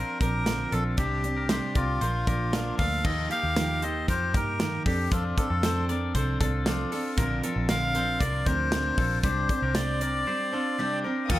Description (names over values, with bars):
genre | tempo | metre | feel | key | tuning
jangly indie pop | 116 BPM | 4/4 | straight | unclear | A4 = 442 Hz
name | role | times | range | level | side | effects
melodica | melody | 0.0-11.0 s | F4 to F5 | -30 LUFS | left 1 dB | plate reverb
picked steel-string acoustic guitar | accompaniment | 0.0-11.4 s | Bb2 to C5 | -32 LUFS | right 3 dB | none
twangy electric guitar | arpeggios | 0.0-11.4 s | D4 to D5 | -34 LUFS | left 5 dB | spring reverb, plate reverb
vintage muted picked electric bass | bass | 0.0-11.4 s | Bb1 to G2 | -30 LUFS | equal | none
modern studio drum kit | drums | 0.2-11.4 s | crash cymbal, hi-hat, kick drum, snare drum | -29 LUFS | equal | none
warm studio string section | sustained chords | 11.3-11.4 s | Bb4 to Eb6 | -30 LUFS | left 5 dB | none
room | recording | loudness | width
light reverb | none | -24 LUFS | side -15 dB against mid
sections
0.0-3.0 A section; 3.0-11.3 B section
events
none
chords
0.0 Bbadd9; 1.0 Csus2; 2.0 Bb; 3.0 Ebadd9; 4.9 F6; 7.2 Bbadd9; 9.2 Csus2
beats
0.47 | 0.98 1.50 2.02 2.53 | 3.05 3.57 4.08 4.60 | 5.12 5.63 6.15 6.66 | 7.18 7.69 8.21 8.72 | 9.24 9.75 10.27 10.78 | 11.30